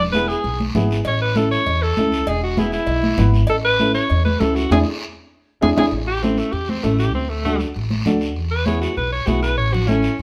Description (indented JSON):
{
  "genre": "latin, cumbia",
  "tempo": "197 BPM",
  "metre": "4/4",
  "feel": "straight",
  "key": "A major",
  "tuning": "A4 = 440 Hz",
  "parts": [
    { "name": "bright alto saxophone", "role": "melody", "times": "0.0-10.2 s", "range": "A3 to C#5", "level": "-24 LUFS", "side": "equal", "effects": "none" },
    { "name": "upright bass", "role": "bass", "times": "0.0-10.2 s", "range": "E1 to E2", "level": "-24 LUFS", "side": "equal", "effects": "none" },
    { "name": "dark upright piano", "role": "accompaniment", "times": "0.1-10.1 s", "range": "B3 to B4", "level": "-25 LUFS", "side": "equal", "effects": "none" },
    { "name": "congas", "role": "percussion", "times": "0.1-10.0 s", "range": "none", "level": "-26 LUFS", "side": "equal", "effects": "none" },
    { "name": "guiro", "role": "percussion", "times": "0.1-10.2 s", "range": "none", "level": "-36 LUFS", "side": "equal", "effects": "none" },
    { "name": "cowbell and timbales", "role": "percussion", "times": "1.0-5.8 s", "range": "none", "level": "-29 LUFS", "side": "equal", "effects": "none" }
  ],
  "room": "moderate stone room reverb, RT60 0.9 s",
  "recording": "band playing live in one room",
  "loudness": "-19 LUFS",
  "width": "mono",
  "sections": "0.0-5.9 A section; 5.9-10.2 B section",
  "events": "band accent 4.7-5.9; drum fill 5.0-5.9; alto saxophone solo 5.9-10.2",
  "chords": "0.0 E; 1.1 A; 2.3 E; 3.5 A; 4.7 E7; 5.9 A; 7.1 D; 8.4 E; 9.6 A"
}